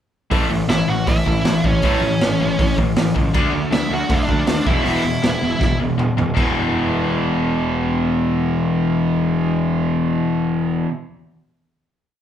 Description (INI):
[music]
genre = punk rock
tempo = 159 BPM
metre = 4/4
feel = straight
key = unclear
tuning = A4 = 441 Hz
[part]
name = biting overdriven guitar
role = riff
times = 0.3-10.9 s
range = E2 to D4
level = -21 LUFS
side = left 5 dB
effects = none
[part]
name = distorted electric guitar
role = riff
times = 0.3-10.9 s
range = E2 to D4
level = -23 LUFS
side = right 5 dB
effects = distortion
[part]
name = fuzz picked electric bass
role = bass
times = 0.3-10.8 s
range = E1 to D#2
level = -25 LUFS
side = right 1 dB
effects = overdrive
[part]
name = raw garage drum kit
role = drums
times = 0.3-6.5 s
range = china cymbal, crash cymbal, hi-hat, kick drum, snare drum, toms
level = -21 LUFS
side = right 1 dB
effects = none
[part]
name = high-gain lead guitar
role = melody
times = 0.7-5.8 s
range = C#4 to F#5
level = -22 LUFS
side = right 1 dB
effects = distortion
[sound]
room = moderate large studio reverb, RT60 0.9 s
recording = band playing live in one room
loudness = -16 LUFS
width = side -10 dB against mid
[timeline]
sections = 0.3-6.4 verse; 6.4-9.4 final chord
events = drum fill 5.6-6.4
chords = 0.3 A; 3.4 D; 4.7 E5